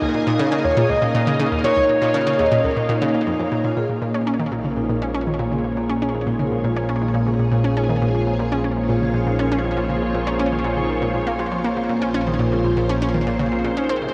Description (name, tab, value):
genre	ambient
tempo	120 BPM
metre	4/4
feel	straight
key	Bb minor from 3.9 s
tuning	A4 = 439 Hz
part	string machine, full ensemble	sustained chords	0.0-14.1 s	Ab3 to Ab5	-26 LUFS	equal	ensemble chorus
part	vibraphone with soft mallets	arpeggios	0.0-14.1 s	Ab3 to Eb5	-27 LUFS	equal	delay
part	analog pluck	riff	0.0-14.1 s	Db2 to Db4	-26 LUFS	equal	chorus, delay
part	pulse-width lead	melody	0.6-2.6 s	Db5 to Eb5	-25 LUFS	equal	chorus, delay
part	analog drone	bass	4.6-14.1 s	Ab1 to Bb1	-27 LUFS	equal	chorus, tube saturation
room	wet huge ambient reverb, RT60 9.5 s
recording	worn, warbling old tape, cassette tape, warbly pitch drift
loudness	-20 LUFS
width	mono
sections	0.0-3.9 A section; 3.9-14.1 B section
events	none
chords	0.0 Bbm7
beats	0.39 0.89 1.39 | 1.89 2.39 2.89 3.39 | 3.89 4.39 4.89 5.39 | 5.89 6.39 6.89 7.39 | 7.89 8.39 8.89 9.39 | 9.89 10.39 10.89 11.39 | 11.89 12.39 12.89 13.39 | 13.89